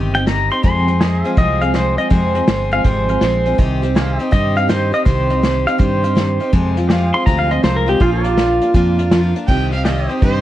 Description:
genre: honky-tonk and classic country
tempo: 163 BPM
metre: 4/4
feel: swing 65% on 8ths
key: C minor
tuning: A4 = 440 Hz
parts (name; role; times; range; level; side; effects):
- picked steel-string acoustic guitar; accompaniment; 0.0-10.4 s; F2 to Ab4; -20 LUFS; left 1 dB; none
- pedal steel guitar; sustained chords; 0.0-10.4 s; G4 to F5; -28 LUFS; right 2 dB; none
- fingered electric bass; bass; 0.0-10.4 s; G1 to G2; -19 LUFS; equal; none
- pedal steel guitar; melody; 0.1-9.2 s; F4 to C6; -19 LUFS; right 1 dB; tape echo
- unplugged drum kit; drums; 0.1-10.3 s; crash cymbal, hi-hat, kick drum, snare drum; -17 LUFS; equal; vintage 12-bit sampler grit
- clear fiddle; second line; 9.5-10.4 s; C5 to G5; -23 LUFS; right 5 dB; none
room: light reverb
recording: cassette tape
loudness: -13 LUFS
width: side -13 dB against mid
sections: 0.0-9.5 A section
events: pedal steel guitar solo 0.0-9.5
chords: 0.0 Cm; 0.6 Fm; 3.6 Cm; 6.5 Fm; 8.0 Bb; 9.5 Cm

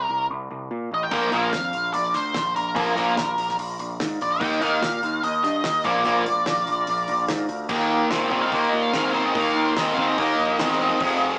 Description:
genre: classic rock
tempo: 146 BPM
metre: 4/4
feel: straight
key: unclear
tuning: A4 = 442 Hz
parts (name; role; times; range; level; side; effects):
- octave-fuzz lead guitar; melody; 0.0-11.3 s; Bb4 to G5; -26 LUFS; equal; distortion
- growling picked electric bass; bass; 0.0-11.3 s; F1 to Bb2; -32 LUFS; equal; overdrive
- tonewheel organ; sustained chords; 1.1-11.4 s; C4 to Bb4; -38 LUFS; equal; none
- sludgy distorted guitar; riff; 1.1-11.4 s; F2 to Eb4; -25 LUFS; equal; overdrive
- tight distorted guitar; riff; 1.1-11.4 s; F2 to Eb4; -29 LUFS; equal; distortion
- damped 70s drum kit; drums; 1.1-11.1 s; crash cymbal, hi-hat, kick drum, snare drum; -35 LUFS; equal; none
room: moderate small room reverb, RT60 0.5 s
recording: rough rehearsal-room recording, tube saturation, small speaker sound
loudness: -23 LUFS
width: mono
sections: 0.0-7.7 A section; 7.7-11.4 B section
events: lead electric guitar solo 7.7-11.4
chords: 0.0 N.C.; 1.1 Bb; 4.4 Eb; 5.8 Bb; 7.7 Ebadd9

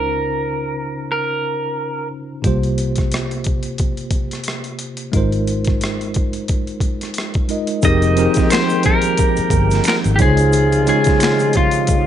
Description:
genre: R&B, neo-soul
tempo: 89 BPM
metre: 4/4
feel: swing 56% on 16ths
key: unclear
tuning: A4 = 440 Hz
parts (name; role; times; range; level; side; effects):
- electric guitar through a small old amp; melody; 0.0-2.1, 7.8-12.1 s; F4 to Eb5; -19 LUFS; right 1 dB; slapback echo
- bell-like tine electric piano; accompaniment; 0.0-12.1 s; C3 to Eb5; -21 LUFS; equal; medium stereo tremolo
- vintage muted fingered electric bass; bass; 0.0-10.9 s; F1 to Db2; -20 LUFS; equal; none
- boom bap sampler-style drum kit; drums; 2.4-12.1 s; finger snaps, hi-hat, kick drum, rim click, snare drum; -19 LUFS; equal; overdrive
- tonewheel organ; sustained chords; 7.8-12.1 s; Eb3 to G5; -28 LUFS; equal; none
- warm horn section; stabs; 7.8-12.1 s; C3 to G4; -26 LUFS; left 4 dB; none
- tube shaker and finger snaps; percussion; 7.8-12.1 s; none; -30 LUFS; right 6 dB; none
room: little or no reverb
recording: nothing above 10.8 kHz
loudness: -15 LUFS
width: side -10 dB against mid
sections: 0.0-7.8 A section; 7.8-12.1 B section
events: none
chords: 0.0 Dbmaj9; 2.4 C7sus4; 5.1 Ab6; 7.8 Fm11; 10.2 Dbmaj9

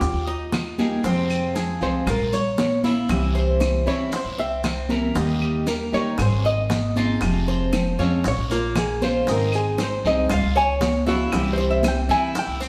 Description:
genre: latin, Cuban son and guajira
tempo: 117 BPM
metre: 4/4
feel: straight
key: F minor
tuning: A4 = 441 Hz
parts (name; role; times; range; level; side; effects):
- archtop guitar, miked and amplified; melody; 0.0-12.7 s; F4 to Ab5; -27 LUFS; equal; none
- picked steel-string acoustic guitar; accompaniment; 0.0-12.4 s; C3 to Ab4; -28 LUFS; equal; none
- Cuban tres; arpeggios; 0.0-12.7 s; Bb3 to Eb5; -30 LUFS; equal; none
- upright bass; bass; 0.0-12.7 s; F1 to Eb3; -28 LUFS; equal; none
- bongos; percussion; 0.0-12.7 s; none; -33 LUFS; equal; none
- congas; percussion; 0.0-12.7 s; none; -30 LUFS; equal; none
- guiro; percussion; 0.0-12.7 s; none; -39 LUFS; equal; none
- maracas; percussion; 0.0-12.7 s; none; -43 LUFS; equal; none
- claves; percussion; 0.5-12.1 s; none; -39 LUFS; equal; none
room: wet stone room reverb, RT60 1.2 s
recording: band playing live in one room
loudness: -22 LUFS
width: mono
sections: 0.0-12.7 A section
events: hollow-body jazz guitar solo 0.0-12.7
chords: 0.0 Eb; 1.0 Fm; 2.1 Bbm; 3.1 C; 5.2 Eb; 6.2 Ab; 7.2 Fm; 8.2 Bbm7; 9.3 Ab; 10.3 Db; 11.3 C

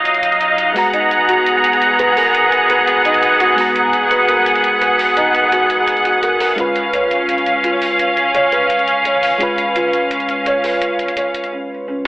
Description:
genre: liquid drum and bass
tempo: 170 BPM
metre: 4/4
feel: straight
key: unclear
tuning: A4 = 440 Hz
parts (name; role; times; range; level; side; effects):
- mellow FM electric piano; accompaniment; 0.0-12.1 s; Gb3 to Bb5; -23 LUFS; equal; chorus, tape echo
- rich symphonic string section; sustained chords; 0.0-11.5 s; Gb3 to Bb5; -13 LUFS; equal; low-pass filter
- electronic hi-hat; drums; 0.1-11.5 s; none; -25 LUFS; equal; overdrive, small room ambience
- felt-muted upright piano; arpeggios; 0.9-12.1 s; Db4 to Db5; -21 LUFS; equal; tape echo
room: moderate huge ambient reverb, RT60 4.5 s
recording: telephone sound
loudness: -12 LUFS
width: side -20 dB against mid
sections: 0.0-12.1 A section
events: break 11.5-12.1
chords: 0.0 Ebm9; 0.8 Abm9; 6.6 Db7

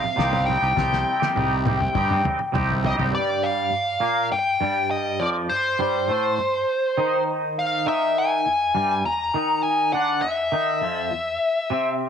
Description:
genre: psychedelic rock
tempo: 102 BPM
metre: 4/4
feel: straight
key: G minor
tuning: A4 = 439 Hz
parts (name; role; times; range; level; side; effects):
- dark smooth lead guitar; melody; 0.0-12.0 s; C5 to Bb5; -22 LUFS; left 1 dB; wah, overdrive, slapback echo
- twangy electric guitar; riff; 0.0-12.1 s; E2 to G4; -25 LUFS; right 1 dB; harmonic tremolo, double-tracked left and right
- congas; percussion; 0.0-3.0 s; none; -34 LUFS; right 11 dB; none
- fuzz fingered electric bass; bass; 0.2-3.1 s; C2 to G2; -25 LUFS; right 2 dB; overdrive
- cloth-damped thuddy drum kit; drums; 0.2-3.1 s; kick drum, snare drum, toms; -28 LUFS; left 4 dB; none
room: wet spring reverb, RT60 2.7 s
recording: 1960s-style stereo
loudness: -20 LUFS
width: side -7 dB against mid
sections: 0.0-3.1 A section; 3.1-12.1 B section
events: drum fill 0.8-3.1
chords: 0.0 Cm; 3.1 Gm; 7.9 Emaj7#5

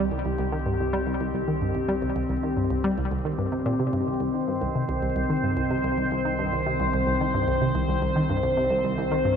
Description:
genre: ambient, sequencer-driven space music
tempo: 110 BPM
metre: 4/4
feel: straight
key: C minor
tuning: A4 = 438 Hz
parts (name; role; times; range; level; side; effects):
- evolving wavetable pad; sustained chords; 0.0-9.4 s; Eb3 to C5; -25 LUFS; left 1 dB; chorus, built-in reverb
- analog pluck; riff; 0.0-9.4 s; C2 to G3; -27 LUFS; right 1 dB; chorus, ping-pong delay
- analog drone; bass; 0.0-9.4 s; C2; -34 LUFS; right 1 dB; chorus
room: wet lush hall reverb, RT60 2.8 s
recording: none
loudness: -23 LUFS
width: side -7 dB against mid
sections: 0.0-9.4 A section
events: none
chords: 0.0 Cm

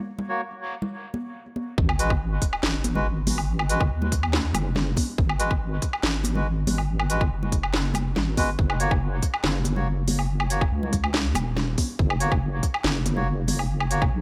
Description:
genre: deep dubstep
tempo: 141 BPM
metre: 4/4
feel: half-time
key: G# minor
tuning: A4 = 440 Hz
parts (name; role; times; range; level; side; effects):
- congas; percussion; 0.2-13.6 s; none; -34 LUFS; equal; dub echo
- melodica; stabs; 0.3-14.0 s; G#3 to C#5; -33 LUFS; equal; low-pass filter, dub echo
- deep soft wobble bass; bass; 1.8-14.2 s; E1 to D#2; -28 LUFS; equal; chorus
- electronic kick drum; drums; 1.8-14.1 s; none; -27 LUFS; equal; none
- sub drop; sound effects; 1.8-3.5 s; none; -35 LUFS; equal; none
- garage drum kit; drums; 1.9-14.1 s; hi-hat, snare drum, woodblock; -30 LUFS; equal; none
room: little or no reverb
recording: none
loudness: -25 LUFS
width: mono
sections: 0.0-1.8 A section; 1.8-14.2 B section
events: drop 1.8-14.2; impact 1.8-3.5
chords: 0.0 F#; 1.8 G#m7; 8.6 F#

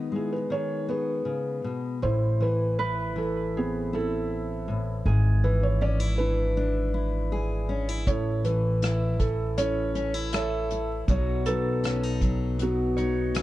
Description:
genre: acoustic folk-pop ballad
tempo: 79 BPM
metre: 4/4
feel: straight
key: unclear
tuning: A4 = 442 Hz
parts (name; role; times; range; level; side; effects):
- fingerpicked steel-string acoustic guitar; accompaniment; 0.0-13.4 s; G#2 to A4; -30 LUFS; left 2 dB; none
- felt-muted upright piano; melody; 0.2-13.4 s; B3 to E5; -29 LUFS; right 2 dB; none
- upright bass; bass; 2.0-13.4 s; G#1 to B1; -28 LUFS; equal; none
- concert harp; arpeggios; 2.8-13.4 s; G#4 to C#5; -34 LUFS; right 2 dB; analog delay
- unplugged drum kit; drums; 8.1-13.4 s; hi-hat, kick drum, rim click; -29 LUFS; equal; vintage 12-bit sampler grit
room: moderate spring reverb, RT60 2.5 s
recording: dark, warm production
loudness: -24 LUFS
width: side -15 dB against mid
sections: 0.0-2.0 A section; 2.0-13.4 B section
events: none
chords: 0.0 G#m7/D#; 2.0 Amadd9; 5.1 E7/G#; 8.1 A; 11.1 B

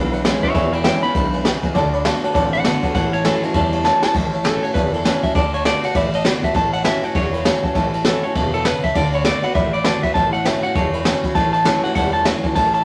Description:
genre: rockabilly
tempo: 200 BPM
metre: 4/4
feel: swing 61% on 8ths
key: A major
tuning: A4 = 439 Hz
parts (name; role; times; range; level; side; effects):
- clean electric guitar; melody; 0.0-12.8 s; E4 to B5; -24 LUFS; equal; none
- picked steel-string acoustic guitar; accompaniment; 0.0-12.8 s; E2 to F#4; -26 LUFS; equal; none
- warm upright piano; accompaniment; 0.0-12.8 s; B4 to B5; -27 LUFS; equal; none
- electric guitar through a small old amp; riff; 0.0-4.1, 11.4-12.8 s; E2 to C4; -28 LUFS; equal; none
- upright bass; bass; 0.0-12.8 s; E1 to E2; -27 LUFS; equal; none
- jazz brush drum kit; drums; 0.1-12.8 s; crash cymbal, kick drum, ride cymbal, snare drum; -23 LUFS; equal; none
room: wet studio reverb, RT60 0.8 s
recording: none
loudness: -18 LUFS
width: mono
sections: 0.0-4.2 A section; 4.2-12.8 B section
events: clean electric guitar solo 0.0-4.2; drum fill 3.9-4.2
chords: 0.0 E6; 1.7 D6; 2.9 A6; 5.4 D6; 6.6 A6; 9.0 D6; 10.2 A6

